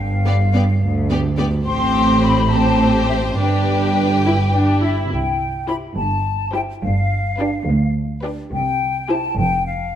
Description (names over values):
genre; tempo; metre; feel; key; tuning
cinematic, playful, whimsical film cue; 70 BPM (dotted quarters); 6/8; straight; C major; A4 = 440 Hz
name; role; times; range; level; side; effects
hollow small flute group; second line; 0.0-10.0 s; E5 to C6; -22 LUFS; left 4 dB; none
clear studio double bass section; bass; 0.0-10.0 s; F1 to D2; -21 LUFS; right 2 dB; none
rich studio cello section; bass; 0.0-10.0 s; D2 to C3; -22 LUFS; right 1 dB; none
rich studio viola section; accompaniment; 0.2-9.3 s; B3 to E4; -22 LUFS; right 2 dB; none
clear studio violin section; melody; 0.3-9.3 s; B4 to D5; -29 LUFS; left 4 dB; none
rich studio violin section; second line; 0.3-9.3 s; G4; -27 LUFS; left 4 dB; none
room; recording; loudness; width
moderate scoring stage reverb, RT60 1.6 s; none; -16 LUFS; side -10 dB against mid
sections
0.0-10.0 A section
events
none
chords
0.0 G7; 1.7 Am7; 3.4 G; 5.1 C; 6.8 G7; 8.5 C; 9.4 N.C.